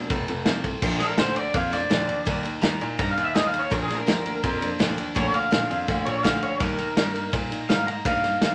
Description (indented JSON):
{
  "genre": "rockabilly",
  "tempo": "166 BPM",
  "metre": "4/4",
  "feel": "straight",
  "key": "Bb major",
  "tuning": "A4 = 440 Hz",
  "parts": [
    { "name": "picked steel-string acoustic guitar", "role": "accompaniment", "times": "0.0-8.5 s", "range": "Bb2 to Bb4", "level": "-33 LUFS", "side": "equal", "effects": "none" },
    { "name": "clear concert grand piano", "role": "bass", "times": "0.0-8.5 s", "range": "F1 to Bb2", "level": "-33 LUFS", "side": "equal", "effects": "none" },
    { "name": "vintage drum kit", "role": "drums", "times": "0.1-8.5 s", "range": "crash cymbal, kick drum, ride cymbal, snare drum", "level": "-28 LUFS", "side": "equal", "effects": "none" },
    { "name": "electric guitar through a small old amp", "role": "melody", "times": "1.0-8.5 s", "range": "Ab4 to Bb5", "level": "-28 LUFS", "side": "equal", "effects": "none" }
  ],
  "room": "moderate studio ambience, RT60 0.5 s",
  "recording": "none",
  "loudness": "-24 LUFS",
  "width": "mono",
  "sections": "0.8-8.5 A section",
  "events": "clean electric guitar solo 0.8-8.5",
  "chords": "0.1 F; 0.8 Bb; 2.3 Eb; 3.7 Bb; 6.6 Eb"
}